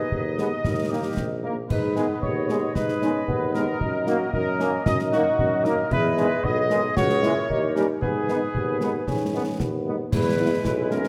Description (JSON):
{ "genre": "military-style march for wind band", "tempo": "114 BPM", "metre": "2/4", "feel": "straight", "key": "G# minor", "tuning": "A4 = 441 Hz", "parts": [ { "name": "warm trumpet section", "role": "melody", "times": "0.0-11.1 s", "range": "F#4 to D#5", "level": "-32 LUFS", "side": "equal", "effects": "none" }, { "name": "clear euphonium", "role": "second line", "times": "0.0-10.1 s", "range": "B3 to F#4", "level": "-31 LUFS", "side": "equal", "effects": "none" }, { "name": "mellow woodwind section", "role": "second line", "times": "0.0-11.1 s", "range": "C#4 to D#5", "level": "-35 LUFS", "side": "equal", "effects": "none" }, { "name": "clear tuba", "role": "bass", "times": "0.0-11.1 s", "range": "A#1 to G#2", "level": "-29 LUFS", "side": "equal", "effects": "none" }, { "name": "concert bass drum, concert snare drum and clash cymbals", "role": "drums", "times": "0.1-11.1 s", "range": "none", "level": "-31 LUFS", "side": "equal", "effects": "none" }, { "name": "dark French horn section", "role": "accompaniment", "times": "0.4-11.0 s", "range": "G3 to G#4", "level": "-35 LUFS", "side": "equal", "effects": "none" }, { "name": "warm trombone section", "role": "sustained chords", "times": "0.4-11.1 s", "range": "D#3 to B3", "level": "-34 LUFS", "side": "equal", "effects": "none" } ], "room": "moderate scoring stage reverb, RT60 1.4 s", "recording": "none", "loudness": "-24 LUFS", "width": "mono", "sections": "0.0-10.1 A section", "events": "none", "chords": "0.0 G#m/D#; 0.7 D#; 1.7 G#m; 3.8 D#m/F#; 5.9 Emaj7; 7.0 A#m7b5/C#; 7.5 D#7; 8.0 G#m; 10.1 E", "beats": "0.12 | 0.65 1.18 | 1.70 2.23 | 2.76 3.28 | 3.81 4.34 | 4.86 5.39 | 5.92 6.44 | 6.97 7.49 | 8.02 8.55 | 9.07 9.60 | 10.12 10.65" }